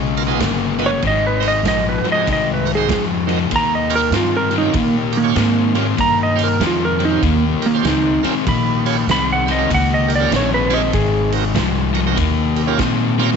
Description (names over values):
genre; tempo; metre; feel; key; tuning
electric blues shuffle; 97 BPM; 4/4; swing 63% on 8ths; unclear; A4 = 441 Hz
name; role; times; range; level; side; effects
crunchy overdriven guitar; riff; 0.0-13.4 s; Ab2 to C4; -20 LUFS; left 13 dB; none
upright bass; bass; 0.0-13.4 s; G1 to Bb2; -21 LUFS; right 1 dB; none
bright tonewheel organ; accompaniment; 0.2-13.3 s; Cb4 to Db5; -26 LUFS; right 13 dB; overdrive, slow rotary speaker
raw garage drum kit; drums; 0.2-13.4 s; kick drum, ride cymbal, snare drum; -24 LUFS; right 6 dB; none
clean lap steel guitar; melody; 0.9-11.3 s; Bb3 to Cb6; -18 LUFS; right 4 dB; none
room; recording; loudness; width
light reverb, studio ambience; 1960s-style stereo with parts hard left and right, nothing above 7.8 kHz; -14 LUFS; side -6 dB against mid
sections
0.0-13.4 A section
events
electric slide guitar solo 0.0-13.4; drum fill 13.1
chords
0.0 Db7; 1.0 Ab7; 3.5 Eb7; 10.9 Ab7; 12.2 Eb7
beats
0.41 | 1.03 1.65 2.27 2.89 | 3.51 4.13 4.75 5.37 | 5.99 6.61 7.23 7.84 | 8.46 9.08 9.70 10.32 | 10.94 11.56 12.18 12.80